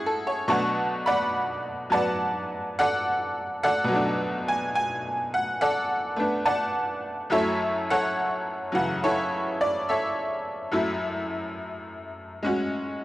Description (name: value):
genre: solo jazz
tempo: 70 BPM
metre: 4/4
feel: swing 68% on 8ths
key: unclear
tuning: A4 = 438 Hz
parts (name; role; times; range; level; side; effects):
- tack piano; solo; 0.0-13.0 s; F#2 to C#6; -24 LUFS; equal; cassette tape
room: light reverb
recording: home recording on cassette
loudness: -24 LUFS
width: side -16 dB against mid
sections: 0.0-13.0 A section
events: none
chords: 0.5 Bm7; 7.3 F#m7